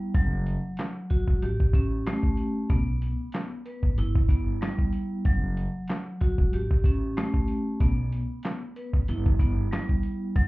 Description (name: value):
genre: hip hop, boom-bap hip-hop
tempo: 94 BPM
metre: 4/4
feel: swing 55% on 16ths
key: unclear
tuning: A4 = 436 Hz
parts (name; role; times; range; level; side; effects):
- vibraphone with hard mallets; accompaniment; 0.0-10.5 s; F#3 to B4; -31 LUFS; equal; high-pass filter, low-pass filter
- upright bass; bass; 0.1-10.5 s; E1 to B1; -28 LUFS; equal; none
- dusty soul sampler-style drum kit; drums; 0.1-10.5 s; handclaps, hi-hat, kick drum, snare drum; -24 LUFS; equal; none
- maracas; percussion; 0.1-10.2 s; none; -65 LUFS; left 4 dB; none
room: light reverb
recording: heard muffled through a wall, club reverb, EQ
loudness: -24 LUFS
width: side -20 dB against mid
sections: 0.0-10.5 A section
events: none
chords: 0.1 N.C.; 1.4 A7; 2.7 N.C.; 4.0 G6; 5.3 N.C.; 6.5 A7; 7.8 N.C.; 9.1 G6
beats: | 0.14 0.78 1.42 2.06 | 2.70 3.34 3.98 4.61 | 5.25 5.89 6.53 7.17 | 7.80 8.44 9.08 9.72 | 10.36